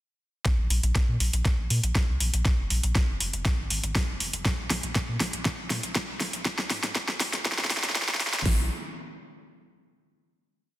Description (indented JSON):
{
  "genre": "progressive house",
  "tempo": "120 BPM",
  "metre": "4/4",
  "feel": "straight",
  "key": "unclear",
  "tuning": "A4 = 441 Hz",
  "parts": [
    { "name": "deep house drum kit", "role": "drums", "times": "0.5-8.5 s", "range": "hi-hat, snare drum", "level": "-28 LUFS", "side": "equal", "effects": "studio reverb, sidechain pumping on hats" },
    { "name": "pop drum kit", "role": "drums", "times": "0.5-8.6 s", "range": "hi-hat, kick drum, snare drum", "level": "-25 LUFS", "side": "equal", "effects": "studio reverb" },
    { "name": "round analog bass", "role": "bass", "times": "0.6-8.7 s", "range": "F1 to Bb2", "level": "-28 LUFS", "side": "equal", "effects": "sidechain pumping" }
  ],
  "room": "light reverb",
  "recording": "dense, heavily limited modern master, high-pass filter",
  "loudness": "-24 LUFS",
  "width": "side -15 dB against mid",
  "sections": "0.5-8.5 build; 8.5-10.5 final chord",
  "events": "build-up 0.5-8.5; drum fill 0.5-8.5; filter sweep 0.5-8.5",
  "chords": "none",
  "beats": "| 0.46 0.95 1.46 1.96 | 2.46 2.96 3.46 3.96 | 4.46 4.96 5.46 5.96 | 6.46 6.96 7.46 7.96 | 8.46"
}